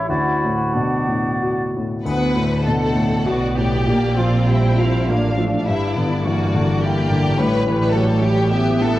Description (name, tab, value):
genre	classical, romantic movement for piano and orchestra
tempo	88-109 BPM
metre	3/4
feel	rubato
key	D major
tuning	A4 = 443 Hz
part	clear baby grand piano	melody	0.0-9.0 s	A1 to G4	-20 LUFS	left 1 dB	none
part	clear clarinet	second line	0.0-1.4 s	D4 to E4	-25 LUFS	left 2 dB	none
part	mellow silver concert flute	second line	0.0-1.7 s	F#5	-30 LUFS	equal	none
part	warm oboe	second line	0.0-1.7 s	D5	-29 LUFS	equal	none
part	warm bassoon	accompaniment	0.0-1.7 s	F#4	-25 LUFS	right 2 dB	none
part	rich symphonic violin section	melody	2.1-9.0 s	C#5 to G5	-30 LUFS	left 1 dB	none
part	clear studio violin section	second line	2.1-9.0 s	D4 to B4	-24 LUFS	left 1 dB	none
part	rich symphonic viola section	accompaniment	2.1-9.0 s	G3 to C4	-26 LUFS	right 1 dB	none
part	rich chamber cello section	bass	2.1-9.0 s	G2 to D3	-24 LUFS	right 2 dB	none
part	warm symphonic double bass section	bass	2.1-9.0 s	G1 to D2	-24 LUFS	right 2 dB	none
part	triangle	percussion	2.1-3.2 s	none	-52 LUFS	left 1 dB	none
room	moderate scoring stage reverb, RT60 2.0 s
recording	worn, warbling old tape, cassette tape, warbly pitch drift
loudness	-16 LUFS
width	side -15 dB against mid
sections	0.0-2.1 A section; 2.1-9.0 A section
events	none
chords	0.1 D; 3.9 Bb; 5.7 Em7b5/G; 7.4 A7